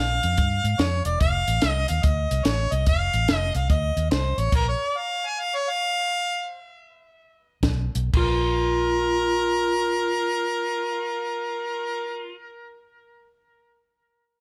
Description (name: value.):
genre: electric blues shuffle.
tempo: 116-145 BPM.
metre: 4/4.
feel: swing 64% on 8ths.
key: unclear.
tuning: A4 = 444 Hz.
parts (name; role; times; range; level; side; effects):
mellow harmonica; melody; 0.0-12.3 s; Bb4 to Ab5; -28 LUFS; equal; none.
vintage muted fingered electric bass; bass; 0.0-4.7, 7.6-12.3 s; E1 to Ab2; -27 LUFS; equal; none.
compact cocktail drum kit; drums; 0.2-4.6, 7.6-8.3 s; crash cymbal, hi-hat, kick drum, snare drum; -26 LUFS; equal; none.
overdriven slide guitar; second line; 8.2-12.4 s; F4; -29 LUFS; equal; none.
room: light reverb.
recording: none.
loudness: -24 LUFS.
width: mono.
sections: 0.0-8.1 A section; 8.1-12.3 B section.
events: slowing down 4.5-8.1; stop 4.5-7.6.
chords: 0.0 Bb7(no3); 1.2 F7; 4.5 Bb5; 7.6 N.C.; 8.1 Bb5.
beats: 0.39 0.80 | 1.22 1.63 2.04 2.46 | 2.87 3.29 3.70 4.11 | 4.53 4.94 5.36 5.79 | 6.23 6.67 7.14 7.62 | 8.13 8.64 9.16 9.68 | 10.20 10.71 11.23 11.75.